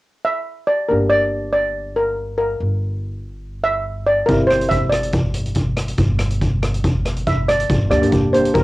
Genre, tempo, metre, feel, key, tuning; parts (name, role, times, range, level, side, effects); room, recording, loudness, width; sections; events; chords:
calypso; 141 BPM; 4/4; swing 54% on 16ths; A4 = 440 Hz
steel pan; melody; 0.2-8.6 s; Bb4 to E5; -18 LUFS; equal; cassette tape
steel pan; accompaniment; 0.9-8.5 s; Bb3 to G4; -21 LUFS; equal; cassette tape
upright bass; bass; 0.9-8.6 s; G1 to D2; -24 LUFS; equal
street-band drum kit; drums; 4.3-8.6 s; hi-hat, kick drum, rim click; -19 LUFS; equal; cassette tape
light reverb; home recording on cassette; -16 LUFS; side -19 dB against mid
0.9-7.7 A section
0.0 N.C.; 0.9 Gm; 4.3 Cadd9/G; 7.7 Gm